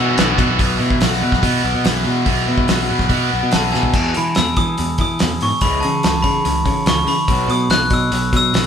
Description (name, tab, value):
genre	indie rock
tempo	143 BPM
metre	4/4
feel	straight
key	unclear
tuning	A4 = 440 Hz
part	glockenspiel with hard plastic mallets	melody	0.0-0.3, 3.5-8.7 s	G#5 to F#6	-20 LUFS	left 1 dB	none
part	raw garage guitar	riff	0.0-8.7 s	E2 to B4	-21 LUFS	left 3 dB	overdrive
part	scooped high-gain guitar	riff	0.0-3.9 s	E3 to F#4	-23 LUFS	right 6 dB	distortion
part	modern bright picked electric bass	bass	0.0-8.7 s	B1 to E3	-20 LUFS	right 1 dB	none
part	cloth-damped thuddy drum kit	drums	0.2-8.6 s	crash cymbal, hi-hat, kick drum, ride cymbal, snare drum, toms	-19 LUFS	equal	none
room	moderate studio reverb, RT60 0.7 s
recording	band playing live in one room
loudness	-14 LUFS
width	side -8 dB against mid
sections	0.6-3.9 A section; 3.9-8.7 B section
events	drum fill 3.7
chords	0.0 Bsus4; 3.9 Emaj7(no3); 5.6 C#m7; 7.3 B5